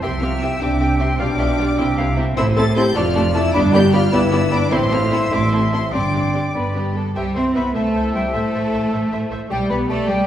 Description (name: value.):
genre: quick classical-period movement for symphony orchestra.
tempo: 102 BPM (dotted quarters).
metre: 6/8.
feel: straight.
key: C major.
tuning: A4 = 439 Hz.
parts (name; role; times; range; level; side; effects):
clear studio violin section; melody; 0.0-10.2 s; E5 to A6; -30 LUFS; left 4 dB; none.
bright silver concert flute; second line; 0.0-10.3 s; G5 to C6; -27 LUFS; left 1 dB; none.
rich studio violin section; second line; 0.0-10.3 s; E4 to E5; -30 LUFS; left 3 dB; none.
warm clarinet; second line; 0.0-10.3 s; G4 to G5; -27 LUFS; left 1 dB; none.
warm oboe; second line; 0.0-6.9 s; D5 to F5; -29 LUFS; right 1 dB; none.
clear studio viola section; accompaniment; 0.0-10.2 s; G3 to E5; -26 LUFS; right 1 dB; none.
mellow French horn section; sustained chords; 0.0-10.3 s; C4 to D5; -23 LUFS; left 2 dB; none.
clear studio double bass section; bass; 0.0-10.2 s; F1 to C2; -23 LUFS; equal; none.
rich studio cello section; bass; 0.0-10.3 s; F2 to C4; -22 LUFS; right 2 dB; none.
mellow trumpet section; stabs; 7.2-10.3 s; D5 to E5; -28 LUFS; left 2 dB; none.
room: wet scoring stage reverb, RT60 1.7 s.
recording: heard from further back in the room.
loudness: -16 LUFS.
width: side -11 dB against mid.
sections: 0.0-7.2 A section; 7.2-10.3 B section.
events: none.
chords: 0.0 C; 1.2 G7/B; 1.8 C; 2.4 Am; 3.0 Dm/F; 3.5 G; 4.7 Am; 5.9 Gsus4; 6.5 G; 7.2 C; 8.3 Am; 9.5 G/B.